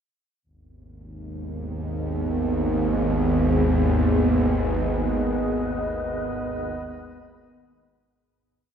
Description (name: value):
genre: dark ambient drone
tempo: free time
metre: none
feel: none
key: unclear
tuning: A4 = 440 Hz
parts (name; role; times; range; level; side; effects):
- deep dark ambient pad; sustained chords; 1.6-8.3 s; B3 to D#5; -26 LUFS; right 2 dB; chorus, built-in reverb, shimmer reverb
- bowed-like drone; drone; 1.2-8.4 s; G#1 to D#2; -24 LUFS; equal; built-in reverb
- wind-like tuned noise texture; texture; 5.0-8.3 s; B3 to B4; -39 LUFS; left 4 dB; built-in reverb, lush chorus, shimmer reverb
room: wet lush hall reverb, RT60 2.5 s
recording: dreamy mix soaked in reverb, cassette tape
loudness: -21 LUFS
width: side -8 dB against mid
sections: 0.4-8.3 A section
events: fade-out 4.4-8.3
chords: 0.4 G#m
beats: free time